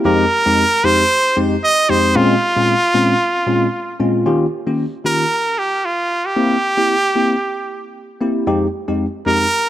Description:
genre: afrobeats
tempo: 114 BPM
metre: 4/4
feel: swing 55% on 16ths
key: F minor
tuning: A4 = 440 Hz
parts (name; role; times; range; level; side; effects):
- bell-like tine electric piano; accompaniment; 0.0-9.5 s; F2 to G4; -17 LUFS; left 1 dB; analog chorus
- brilliant trumpet; melody; 0.1-9.7 s; F4 to Eb5; -15 LUFS; right 1 dB; digital delay
room: light reverb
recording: none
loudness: -14 LUFS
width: side -12 dB against mid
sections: 0.0-4.3 A section; 4.3-9.7 B section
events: none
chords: 0.1 Fm7; 2.2 Bbm7; 4.3 Eb7; 6.4 C7; 8.5 Fm7

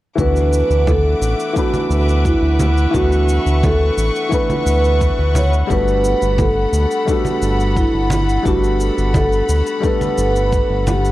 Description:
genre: sunset chillout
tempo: 87 BPM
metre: 4/4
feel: straight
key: D major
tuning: A4 = 440 Hz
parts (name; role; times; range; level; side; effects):
- vibraphone with soft mallets; melody; 0.2-11.1 s; E4 to C#5; -19 LUFS; right 1 dB; none
- dark grand piano; accompaniment; 0.2-11.1 s; E3 to B4; -22 LUFS; moving between left 5 dB and right 3 dB; auto-pan
- rich chamber string section; sustained chords; 0.2-11.1 s; A4 to D6; -24 LUFS; left 2 dB; none
- round analog bass; bass; 0.2-11.1 s; G1 to D2; -17 LUFS; equal; none
- electronic kick drum; drums; 0.2-10.7 s; none; -21 LUFS; equal; none
- shaker; drums; 0.2-11.1 s; none; -33 LUFS; equal; none
- congas; percussion; 0.9-11.0 s; none; -21 LUFS; right 1 dB; none
room: light reverb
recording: worn, warbling old tape, cassette tape, warbly pitch drift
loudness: -14 LUFS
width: side -16 dB against mid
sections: 0.2-11.1 A section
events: none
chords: 0.2 D69; 5.7 Gmaj9

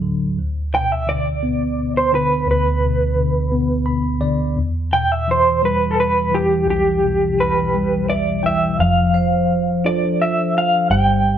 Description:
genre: acoustic folk-pop ballad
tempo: 57 BPM (dotted quarters)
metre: 6/8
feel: straight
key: unclear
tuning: A4 = 441 Hz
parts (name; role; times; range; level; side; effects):
- tine electric piano; accompaniment; 0.0-11.4 s; A1 to B5; -19 LUFS; left 1 dB; medium stereo tremolo
- electric guitar through a small old amp; melody; 0.7-11.4 s; G4 to G5; -18 LUFS; right 1 dB; tremolo
- vintage muted fingered electric bass; bass; 8.8-11.4 s; F1 to G1; -20 LUFS; equal; none
- vibraphone with medium hard mallets; arpeggios; 9.1-11.2 s; C5; -25 LUFS; right 6 dB; none
room: moderate stone room reverb, RT60 1.1 s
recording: band playing live in one room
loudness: -16 LUFS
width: side -9 dB against mid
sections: 0.0-8.8 A section; 8.8-11.4 B section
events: none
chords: 0.4 D5; 4.6 Em; 8.8 F6

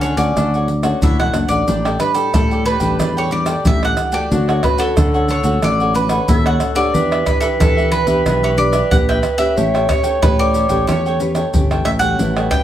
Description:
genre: samba and choro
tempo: 91 BPM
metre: 4/4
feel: straight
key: unclear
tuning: A4 = 440 Hz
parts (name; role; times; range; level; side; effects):
- bowl-back mandolin; melody; 0.0-12.6 s; A4 to G5; -20 LUFS; right 1 dB; plate reverb
- breathy clarinet; second line; 0.0-12.6 s; C#4 to C#5; -22 LUFS; right 1 dB; none
- cavaquinho; accompaniment; 0.0-12.5 s; D4 to G5; -24 LUFS; right 1 dB; none
- nylon-string guitar; accompaniment; 0.0-12.6 s; A2 to B4; -25 LUFS; left 3 dB; none
- sustaining fretless electric bass; bass; 0.0-12.5 s; E1 to E3; -20 LUFS; equal; none
- maracas, pandeiro, surdo and tamborim; percussion; 0.0-12.6 s; none; -19 LUFS; equal; none
room: moderate studio reverb, RT60 0.5 s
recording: heard from further back in the room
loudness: -13 LUFS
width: side -11 dB against mid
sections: 0.0-1.7 A section; 1.7-12.6 B section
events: none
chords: 0.0 Dmaj7; 1.7 A7sus4; 4.3 Dmaj7; 6.9 Em7; 9.6 A9

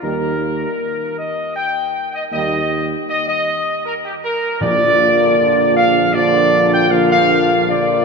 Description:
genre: classical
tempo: 79 BPM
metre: 3/4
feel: straight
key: unclear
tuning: A4 = 440 Hz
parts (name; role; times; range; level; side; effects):
- mellow trumpet section; melody; 0.0-8.0 s; G4 to G5; -16 LUFS; equal; none
- clear trombone section; sustained chords; 0.0-8.0 s; D3 to G3; -25 LUFS; right 4 dB; none
- warm French horn section; sustained chords; 0.0-8.0 s; Bb3 to F4; -22 LUFS; left 4 dB; none
- mellow tuba; bass; 0.0-8.0 s; Bb1 to Eb2; -22 LUFS; right 3 dB; none
- timpani; percussion; 4.6-5.7 s; Bb2; -27 LUFS; left 3 dB; none
room: wet cathedral reverb, RT60 4.8 s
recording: none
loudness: -14 LUFS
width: side -4 dB against mid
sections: 0.0-8.0 A section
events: none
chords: 0.0 Eb; 4.6 Bb

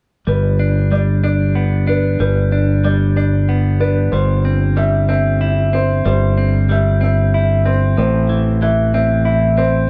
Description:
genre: rock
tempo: 93 BPM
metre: 3/4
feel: straight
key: G major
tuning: A4 = 440 Hz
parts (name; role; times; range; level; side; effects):
- clean electric guitar; arpeggios; 0.3-9.9 s; A2 to E4; -21 LUFS; equal; spring reverb
- felt-muted upright piano; arpeggios; 0.3-9.9 s; B4 to E5; -24 LUFS; equal; none
- growling fingered electric bass; bass; 0.3-9.9 s; G1 to A1; -17 LUFS; equal; overdrive
room: moderate studio ambience, RT60 0.5 s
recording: band playing live in one room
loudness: -15 LUFS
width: mono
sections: 0.3-9.9 A section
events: none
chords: 0.3 G; 4.1 C/G; 8.0 Am

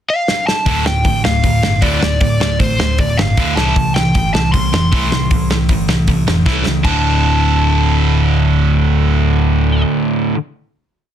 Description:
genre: punk rock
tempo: 156 BPM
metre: 4/4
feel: straight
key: D minor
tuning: A4 = 439 Hz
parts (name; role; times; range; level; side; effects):
- crunchy overdriven guitar; melody; 0.1-9.8 s; C5 to C6; -19 LUFS; equal; none
- loose indie drum kit; drums; 0.3-6.9 s; crash cymbal, hi-hat, kick drum, snare drum; -18 LUFS; equal; none
- cranked stack guitar; riff; 0.7-10.4 s; D2 to A3; -18 LUFS; right 9 dB; overdrive
- sludgy distorted guitar; riff; 0.7-10.4 s; D2 to A3; -19 LUFS; left 8 dB; overdrive
- overdriven picked electric bass; bass; 0.7-9.8 s; D1 to D2; -17 LUFS; equal; none
room: light reverb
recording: dense, heavily limited modern master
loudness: -12 LUFS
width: side -10 dB against mid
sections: 0.0-0.7 pickup bar; 0.7-6.8 verse; 6.8-9.9 final chord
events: drum fill 0.3-0.7, 6.5-6.8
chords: 0.0 N.C.; 0.7 Dm; 3.6 Am; 6.8 D5

